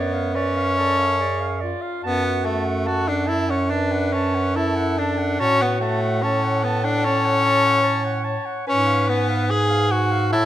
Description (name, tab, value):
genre	classical, lyrical piece for single-reed quartet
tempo	72 BPM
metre	4/4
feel	rubato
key	F# minor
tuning	A4 = 440 Hz
part	mellow soprano saxophone	melody	0.0-10.5 s	E#4 to C#5	-29 LUFS	left 5 dB	none
part	clear clarinet	second line	0.0-10.5 s	D5 to A5	-29 LUFS	right 8 dB	none
part	clear tenor saxophone	accompaniment	0.0-10.5 s	A3 to G#4	-20 LUFS	left 1 dB	none
part	mellow bass clarinet	bass	0.0-10.5 s	F#2 to A2	-24 LUFS	right 2 dB	none
room	moderate recital hall reverb, RT60 1.7 s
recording	none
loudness	-18 LUFS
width	side -12 dB against mid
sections	0.0-10.5 A section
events	none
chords	0.0 C#/F#; 2.0 F#m; 5.4 F#m/A; 8.7 G#m6